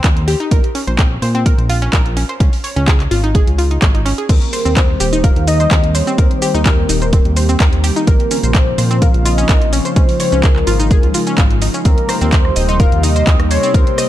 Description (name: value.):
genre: progressive house.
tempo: 127 BPM.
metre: 4/4.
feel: straight.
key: Eb mixolydian.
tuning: A4 = 440 Hz.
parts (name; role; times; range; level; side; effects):
analog pluck; arpeggios; 0.0-14.0 s; C4 to Eb5; -21 LUFS; left 1 dB; chorus, sidechain pumping, tape echo.
fat analog bass; bass; 0.0-13.8 s; Eb1 to Bb2; -16 LUFS; equal; sidechain pumping.
electronic kick drum; drums; 0.0-13.8 s; none; -12 LUFS; equal; overdrive, studio reverb.
pop drum kit; drums; 0.0-14.1 s; crash cymbal, handclaps, hi-hat, rim click, shaker; -22 LUFS; right 1 dB; studio reverb.
warm velvety synth lead; melody; 4.3-14.1 s; Bb4 to F5; -20 LUFS; left 1 dB; chorus, tremolo, cassette tape, sidechain pumping, tape echo.
airy breathy pad; sustained chords; 4.3-14.1 s; C3 to G4; -21 LUFS; equal; chorus, sidechain pumping.
room: digital ambience.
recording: dark, warm production.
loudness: -11 LUFS.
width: side -13 dB against mid.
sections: 0.0-14.1 A section.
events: none.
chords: 0.0 N.C.; 0.5 Bbsus2; 2.4 Db5; 4.3 Eb6; 8.1 Bbmadd9; 10.0 Dbadd9; 11.9 Eb6.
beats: 0.04 | 0.51 0.99 1.46 1.93 | 2.40 2.88 3.35 3.82 | 4.29 4.77 5.24 5.71 | 6.18 6.66 7.13 7.60 | 8.07 8.55 9.02 9.49 | 9.96 10.44 10.91 11.38 | 11.85 12.32 12.80 13.27 | 13.74.